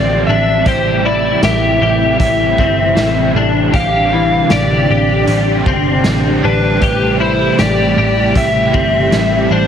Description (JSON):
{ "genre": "dream pop", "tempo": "78 BPM", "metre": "4/4", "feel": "straight", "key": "A minor", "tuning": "A4 = 439 Hz", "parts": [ { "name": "overdriven slide guitar", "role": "melody", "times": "0.0-9.7 s", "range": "B4 to F5", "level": "-16 LUFS", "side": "equal", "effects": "digital delay" }, { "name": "crunchy overdriven guitar", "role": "accompaniment", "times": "0.0-9.7 s", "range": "A2 to F4", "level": "-22 LUFS", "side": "right 5 dB", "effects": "tremolo, analog chorus" }, { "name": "string machine, violas", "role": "sustained chords", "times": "0.0-9.7 s", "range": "C3 to E5", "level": "-18 LUFS", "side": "equal", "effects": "ensemble chorus" }, { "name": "clean electric guitar", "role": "arpeggios", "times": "0.0-9.7 s", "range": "E3 to G4", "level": "-18 LUFS", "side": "left 4 dB", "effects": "ensemble chorus, digital delay" }, { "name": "vintage muted picked electric bass", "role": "bass", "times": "0.0-9.7 s", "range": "G1 to A1", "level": "-18 LUFS", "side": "equal", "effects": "none" }, { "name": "raw garage drum kit", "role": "drums", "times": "0.7-9.3 s", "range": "hi-hat, kick drum, snare drum, tambourine", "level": "-20 LUFS", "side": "equal", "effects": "none" } ], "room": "moderate concert hall reverb, RT60 2.4 s", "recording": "heavily compressed radio sound", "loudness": "-11 LUFS", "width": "side -8 dB against mid", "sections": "0.0-9.7 A section", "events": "none", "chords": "0.0 Dm11/A; 0.7 Am7; 3.7 Dm11/A; 6.8 Am7", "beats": "| 0.66 1.43 2.20 2.97 | 3.74 4.51 5.28 6.05 | 6.82 7.58 8.35 9.12" }